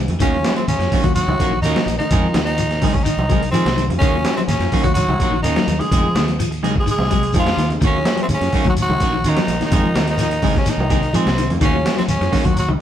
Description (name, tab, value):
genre	afrobeat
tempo	126 BPM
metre	4/4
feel	straight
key	Eb dorian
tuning	A4 = 436 Hz
part	semi-hollow electric guitar	arpeggios	0.0-12.8 s	Db3 to Gb3	-26 LUFS	left 6 dB	none
part	fingered electric bass	bass	0.0-12.8 s	Bb1 to F3	-22 LUFS	equal	none
part	clean electric guitar	stabs	0.1-12.7 s	Eb3 to Ab4	-25 LUFS	right 3 dB	warbly pitch drift
part	boom bap sampler-style drum kit	drums	0.1-12.7 s	hi-hat, kick drum, snare drum	-21 LUFS	equal	none
part	congas	percussion	0.1-12.8 s	none	-26 LUFS	right 2 dB	none
part	raspy tenor saxophone	melody	0.2-12.7 s	C4 to Ab4	-22 LUFS	equal	slapback echo
part	muted trombone section	second line	0.2-12.7 s	C3 to Ab3	-29 LUFS	right 1 dB	none
part	shekere	percussion	0.2-12.7 s	none	-26 LUFS	equal	none
part	overdriven tine electric piano	accompaniment	0.3-12.7 s	Gb3 to Ab4	-31 LUFS	left 3 dB	none
room	light reverb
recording	band playing live in one room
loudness	-15 LUFS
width	side -10 dB against mid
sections	0.0-12.8 A section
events	none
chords	0.2 Ebm7; 2.1 Fm7; 4.0 Ebm7; 5.9 Fm7; 7.8 Ebm7; 9.7 Fm7; 11.6 Ebm7